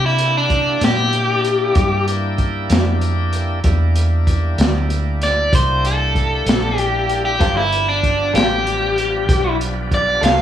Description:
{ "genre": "slow blues", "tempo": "64 BPM (dotted quarters)", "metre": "12/8", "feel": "straight", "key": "unclear", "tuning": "A4 = 438 Hz", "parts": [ { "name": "biting overdriven guitar", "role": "melody", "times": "0.0-10.4 s", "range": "D4 to F5", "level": "-17 LUFS", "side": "equal", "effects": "none" }, { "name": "bright tonewheel organ", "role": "sustained chords", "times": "0.0-10.4 s", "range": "F3 to G4", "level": "-26 LUFS", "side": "equal", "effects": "slow rotary speaker, overdrive" }, { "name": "vintage muted fingered electric bass", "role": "bass", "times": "0.0-10.4 s", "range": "G1 to C3", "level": "-20 LUFS", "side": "equal", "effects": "none" }, { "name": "crunchy breakbeat drum kit", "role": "drums", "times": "0.2-10.4 s", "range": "hi-hat, kick drum, snare drum", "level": "-20 LUFS", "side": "equal", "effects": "none" }, { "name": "electric guitar through a small old amp", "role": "accompaniment", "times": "7.4-10.4 s", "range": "G3 to A4", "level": "-20 LUFS", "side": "left 3 dB", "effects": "tremolo" } ], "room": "little or no reverb", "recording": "small room ambience", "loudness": "-15 LUFS", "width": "side -10 dB against mid", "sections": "0.0-10.4 A section", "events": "overdriven electric guitar solo 0.0-10.4", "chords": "0.0 C9; 7.4 G9" }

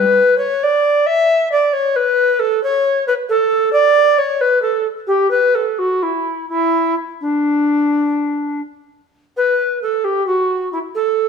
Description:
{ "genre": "classical, baroque-style fantasia for unaccompanied recorder", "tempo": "82-92 BPM (dotted quarters)", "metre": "12/8", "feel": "rubato", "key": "D major", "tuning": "A4 = 440 Hz", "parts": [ { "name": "bass recorder", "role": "solo", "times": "0.0-11.3 s", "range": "D4 to E5", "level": "-14 LUFS", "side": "equal", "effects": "none" } ], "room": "wet stone room reverb, RT60 1.1 s", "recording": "none", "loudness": "-14 LUFS", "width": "side -6 dB against mid", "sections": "0.0-9.4 A section; 9.4-11.3 A section", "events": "none", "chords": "none" }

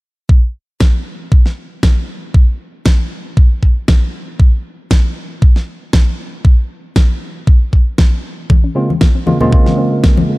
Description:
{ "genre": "nu-disco, nu disco", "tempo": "117 BPM", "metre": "4/4", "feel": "swing 54% on 16ths", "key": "Bb minor", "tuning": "A4 = 445 Hz", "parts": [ { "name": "electronic kick drum", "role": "drums", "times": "0.3-10.1 s", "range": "none", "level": "-9 LUFS", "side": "equal", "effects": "none" }, { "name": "electronic snare drum", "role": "drums", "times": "0.8-10.1 s", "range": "none", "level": "-20 LUFS", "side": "equal", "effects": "none" }, { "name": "soft round pluck", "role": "arpeggios", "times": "8.5-10.4 s", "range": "Ab3 to Db4", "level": "-22 LUFS", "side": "equal", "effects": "chorus, sidechain pumping, tape echo" }, { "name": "congas", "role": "percussion", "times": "8.5-10.3 s", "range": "none", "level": "-18 LUFS", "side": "left 3 dB", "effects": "none" }, { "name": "tine electric piano", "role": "accompaniment", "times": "8.8-10.4 s", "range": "Db3 to F4", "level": "-14 LUFS", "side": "right 1 dB", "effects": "sidechain pumping, tape echo" } ], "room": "little or no reverb", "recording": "none", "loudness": "-11 LUFS", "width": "side -22 dB against mid", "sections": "0.3-10.4 A section", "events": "none", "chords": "0.3 N.C.; 8.5 Bbm9" }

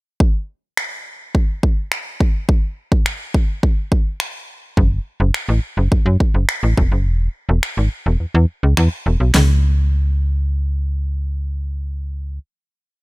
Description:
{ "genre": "dance-pop", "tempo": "105 BPM", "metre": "4/4", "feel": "straight", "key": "unclear", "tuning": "A4 = 443 Hz", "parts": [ { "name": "pop drum kit", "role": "drums", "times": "0.2-9.5 s", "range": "finger snaps, hi-hat, kick drum, snare drum", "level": "-17 LUFS", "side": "equal", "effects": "overdrive" }, { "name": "slap-like FM bass", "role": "bass", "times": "4.8-12.4 s", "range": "E1 to F#2", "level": "-16 LUFS", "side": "equal", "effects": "sidechain pumping" } ], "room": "little or no reverb", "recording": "none", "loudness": "-16 LUFS", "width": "side -23 dB against mid", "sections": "0.2-9.3 verse; 9.3-11.6 final chord", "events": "kick muted 7.1-9.3", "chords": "none" }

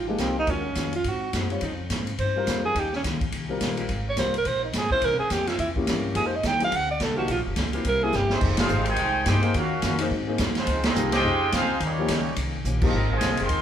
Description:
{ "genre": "jazz, big band swing", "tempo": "212 BPM", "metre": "4/4", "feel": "swing 60% on 8ths", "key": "F minor", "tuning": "A4 = 444 Hz", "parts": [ { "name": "breathy alto saxophone", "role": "melody", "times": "0.0-8.4 s", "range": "Ab3 to G5", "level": "-25 LUFS", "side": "right 2 dB", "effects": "none" }, { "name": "picked steel-string acoustic guitar", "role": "accompaniment", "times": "0.0-13.6 s", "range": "G2 to G4", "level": "-34 LUFS", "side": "left 3 dB", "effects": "none" }, { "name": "upright bass", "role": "bass", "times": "0.0-13.6 s", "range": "F1 to Ab2", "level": "-29 LUFS", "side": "equal", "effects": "none" }, { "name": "warm concert grand piano", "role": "accompaniment", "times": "0.1-12.9 s", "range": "F3 to Db5", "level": "-31 LUFS", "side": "left 3 dB", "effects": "none" }, { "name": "clear saxophone section", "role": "sustained chords", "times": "0.2-13.5 s", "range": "C3 to Bb4", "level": "-36 LUFS", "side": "left 2 dB", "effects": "none" }, { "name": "swinging big-band drum kit", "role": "drums", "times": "0.2-13.6 s", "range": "crash cymbal, hi-hat, kick drum, ride cymbal, snare drum", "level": "-28 LUFS", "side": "right 1 dB", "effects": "none" }, { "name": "warm trumpet section", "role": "melody", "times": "8.3-13.6 s", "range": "Ab3 to C6", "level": "-27 LUFS", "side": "equal", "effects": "none" }, { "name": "brilliant trombone section", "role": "second line", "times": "8.3-13.6 s", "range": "C3 to G4", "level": "-30 LUFS", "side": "right 1 dB", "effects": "none" } ], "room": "moderate large studio reverb, RT60 1.1 s", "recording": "band playing live in one room", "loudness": "-22 LUFS", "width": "side -9 dB against mid", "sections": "0.0-8.4 A section; 8.4-13.6 B section", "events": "alto saxophone solo 0.0-8.4; drum fill 8.1, 12.7; band accent 8.6, 10.8, 12.8", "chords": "0.5 Ebm9; 1.1 Ab7; 1.6 Dbmaj9; 2.8 Eb7; 3.9 Ab69; 5.0 C7b9; 6.2 Fm9; 6.7 D7; 7.3 Gm7b5; 7.9 C7; 8.4 Fm9; 9.5 Ebm9; 10.1 Ab7; 10.7 Dbmaj9; 11.8 Eb7; 12.9 Ab69" }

